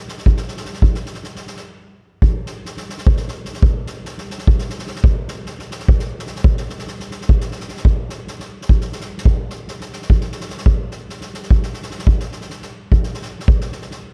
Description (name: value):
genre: balkan folk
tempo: 299 BPM (eighths)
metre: 7/8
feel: straight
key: none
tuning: none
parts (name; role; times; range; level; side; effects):
- soft-mallet drum kit; percussion; 0.1-14.0 s; kick drum, snare drum; -19 LUFS; equal; none
room: little or no reverb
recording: none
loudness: -18 LUFS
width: mono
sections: 0.0-2.2 A section; 2.2-13.5 A section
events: none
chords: none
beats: 0.02 0.22 0.42 0.62 | 0.82 1.02 1.22 1.42 1.62 1.82 2.02 | 2.23 2.43 2.63 2.83 3.03 3.23 3.43 | 3.63 3.83 4.03 4.23 4.43 4.63 4.83 | 5.03 5.23 5.43 5.63 5.83 6.04 6.24 | 6.44 6.64 6.84 7.04 7.24 7.44 7.64 | 7.84 8.04 8.24 8.45 8.65 8.85 9.05 | 9.25 9.45 9.65 9.85 10.05 10.26 10.46 | 10.66 10.86 11.06 11.26 11.46 11.66 11.87 | 12.07 12.27 12.47 12.67 12.87 13.07 13.28 | 13.48 13.68 13.88